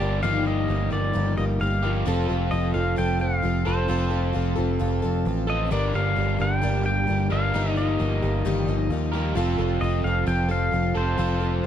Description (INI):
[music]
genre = rock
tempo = 132 BPM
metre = 4/4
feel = straight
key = unclear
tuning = A4 = 440 Hz
[part]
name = pedal steel guitar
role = melody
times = 0.0-11.7 s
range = C5 to G5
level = -29 LUFS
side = left 1 dB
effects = none
[part]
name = picked plugged-in twelve-string acoustic guitar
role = accompaniment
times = 0.0-11.7 s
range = G2 to A4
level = -29 LUFS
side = left 3 dB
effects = none
[part]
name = crunchy overdriven guitar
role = riff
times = 0.0-11.7 s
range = G2 to Bb4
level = -28 LUFS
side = right 2 dB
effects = none
[part]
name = picked electric bass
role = bass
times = 0.0-11.7 s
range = F1 to Eb2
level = -25 LUFS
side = equal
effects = none
[sound]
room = light reverb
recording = dark, warm production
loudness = -21 LUFS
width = side -10 dB against mid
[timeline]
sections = 0.0-11.7 A section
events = none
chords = 0.2 Ebadd9/G; 2.1 F; 5.7 Gm; 7.5 Ebadd9/G; 9.4 F